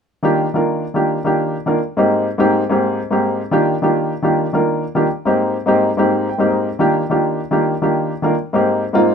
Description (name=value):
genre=jazz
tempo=146 BPM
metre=4/4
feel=straight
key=Eb major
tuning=A4 = 440 Hz
part: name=warm baby grand piano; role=solo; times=0.2-9.1 s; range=Ab2 to G5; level=-14 LUFS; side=equal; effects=none
room=light reverb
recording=minimal, uncompressed stereo recording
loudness=-15 LUFS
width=side -6 dB against mid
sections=0.1-9.1 A section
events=grand piano fill 6.1-6.7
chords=0.1 Ebmaj7; 1.8 Abmaj7; 3.4 Ebmaj7; 5.1 Abmaj7; 6.7 Ebmaj7; 8.3 Abmaj7